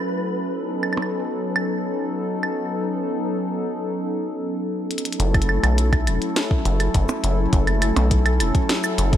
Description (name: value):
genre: IDM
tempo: 103 BPM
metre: 4/4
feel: straight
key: F# minor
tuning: A4 = 439 Hz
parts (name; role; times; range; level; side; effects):
- hollow soft pad; sustained chords; 0.0-9.2 s; F#3 to A4; -24 LUFS; left 1 dB; chorus
- flickering grainy texture; texture; 0.0-2.9 s; B4; -34 LUFS; equal; built-in reverb
- glitchy drum kit; drums; 0.8-9.2 s; claves, hi-hat, percussion blips, shaker, snare drum; -26 LUFS; right 2 dB; overdrive, studio ambience
- deep acid bass; bass; 5.2-9.2 s; E1 to B1; -20 LUFS; equal; none
- electronic kick drum; drums; 5.3-9.2 s; none; -20 LUFS; equal; studio ambience
room: light reverb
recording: none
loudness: -20 LUFS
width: side -11 dB against mid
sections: 0.0-5.2 A section; 5.2-9.2 B section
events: drum fill 4.9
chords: 0.0 F#m7; 0.5 B9; 5.2 F#m7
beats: | 0.54 1.12 1.70 2.29 | 2.87 3.45 4.03 4.62 | 5.20 5.78 6.36 6.95 | 7.53 8.11 8.69